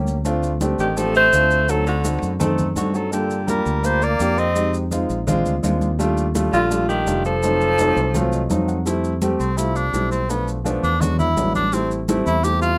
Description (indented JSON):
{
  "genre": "Afro-Cuban jazz",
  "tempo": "167 BPM",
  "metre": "4/4",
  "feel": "straight",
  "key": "F major from 8.9 s",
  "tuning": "A4 = 436 Hz",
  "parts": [
    { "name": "warm concert grand piano", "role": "accompaniment", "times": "0.0-12.7 s", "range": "F3 to Gb5", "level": "-25 LUFS", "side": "equal", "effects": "none" },
    { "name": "fingered electric bass", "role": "bass", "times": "0.0-12.8 s", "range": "F1 to G2", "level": "-25 LUFS", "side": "equal", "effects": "none" },
    { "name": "maracas", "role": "percussion", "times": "0.1-12.8 s", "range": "none", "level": "-37 LUFS", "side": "equal", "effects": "none" },
    { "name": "congas", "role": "percussion", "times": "0.3-12.8 s", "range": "none", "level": "-30 LUFS", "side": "equal", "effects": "none" },
    { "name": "breathy alto saxophone", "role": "melody", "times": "0.8-8.5 s", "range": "F4 to Eb5", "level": "-22 LUFS", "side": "equal", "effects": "none" },
    { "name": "bright tenor saxophone", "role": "second line", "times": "0.8-12.8 s", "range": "D3 to G4", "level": "-26 LUFS", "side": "equal", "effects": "none" }
  ],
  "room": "light reverb",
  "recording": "none",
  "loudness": "-20 LUFS",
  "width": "mono",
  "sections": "0.0-8.9 A section; 8.9-12.8 B section",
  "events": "grand piano fill 8.1-8.9; tenor saxophone solo 8.9-12.8",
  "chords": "0.3 Dm7; 1.7 D7b9; 3.1 Gm7; 4.6 Fm9; 5.3 Bb9; 6.0 Ebmaj9#11; 7.4 F7b9; 8.9 Fmaj9; 10.3 Bm7b5; 11.0 E7; 11.7 Am7"
}